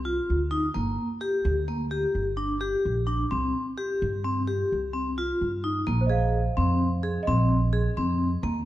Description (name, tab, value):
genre	contemporary instrumental, chamber music in an uneven meter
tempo	258 BPM (eighths)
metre	11/8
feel	straight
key	unclear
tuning	A4 = 440 Hz
part	upright bass	bass	0.0-8.7 s	G1 to G2	-27 LUFS	right 1 dB	none
part	vibraphone with medium hard mallets	arpeggios	0.1-8.6 s	Bb3 to Ab4	-27 LUFS	left 1 dB	none
part	worn celesta	texture	6.0-8.6 s	C5 to F5	-32 LUFS	right 4 dB	none
room	light reverb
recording	dark, warm production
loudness	-24 LUFS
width	side -14 dB against mid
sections	0.0-5.9 A section; 5.9-8.7 B section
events	none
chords	0.0 Cm; 0.7 Gm; 3.3 C5; 5.9 Bb9sus4